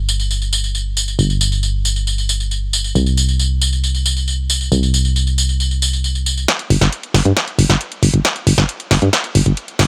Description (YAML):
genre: uplifting trance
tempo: 136 BPM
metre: 4/4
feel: straight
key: unclear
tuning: A4 = 438 Hz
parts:
  - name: solid FM bass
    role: bass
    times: 0.0-9.9 s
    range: G1 to G2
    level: -18 LUFS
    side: equal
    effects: none
  - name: house drum kit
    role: drums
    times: 0.1-9.9 s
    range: hi-hat, snare drum, tambourine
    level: -21 LUFS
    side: equal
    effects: high-pass filter on perc, high-pass filter on snare, high-pass filter on hats
room: little or no reverb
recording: none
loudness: -17 LUFS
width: mono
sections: 0.0-6.5 A section; 6.5-9.9 B section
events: build-up 6.5-9.9; drum fill 6.5-9.9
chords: none